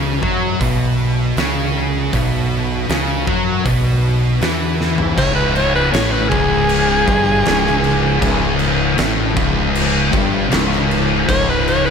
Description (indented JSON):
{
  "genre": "stoner and doom metal",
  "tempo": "79 BPM",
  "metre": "4/4",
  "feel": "straight",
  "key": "C# minor",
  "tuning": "A4 = 438 Hz",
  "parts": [
    { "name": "scooped high-gain guitar", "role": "riff", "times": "0.0-11.9 s", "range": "C#2 to F#3", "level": "-23 LUFS", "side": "right 2 dB", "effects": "distortion" },
    { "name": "thick fuzz guitar", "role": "riff", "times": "0.0-11.9 s", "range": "C#2 to F#3", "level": "-20 LUFS", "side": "left 8 dB", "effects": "distortion" },
    { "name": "thick fuzz guitar", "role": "riff", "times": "0.0-11.9 s", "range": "C#2 to F#3", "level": "-23 LUFS", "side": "right 12 dB", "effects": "distortion" },
    { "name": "growling fingered electric bass", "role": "bass", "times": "0.0-11.9 s", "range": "C#1 to F#2", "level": "-23 LUFS", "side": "equal", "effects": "overdrive" },
    { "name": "oversized low-tuned drum kit", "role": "drums", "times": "0.2-11.8 s", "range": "crash cymbal, hi-hat, kick drum, snare drum, toms", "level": "-20 LUFS", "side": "equal", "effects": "none" },
    { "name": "bright alto saxophone", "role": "melody", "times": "5.2-11.9 s", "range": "G#4 to C#5", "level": "-18 LUFS", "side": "equal", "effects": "tape echo" }
  ],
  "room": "light reverb",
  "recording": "none",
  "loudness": "-14 LUFS",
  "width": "side -6 dB against mid",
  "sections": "0.0-5.2 A section; 5.2-11.9 B section",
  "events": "drum fill 4.8-5.2; alto saxophone solo 5.2-11.9",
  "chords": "0.0 B5; 5.2 C#5",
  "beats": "0.60 1.36 | 2.12 2.89 3.65 4.41 | 5.18 5.94 6.70 7.46 | 8.23 8.99 9.75 10.51 | 11.28"
}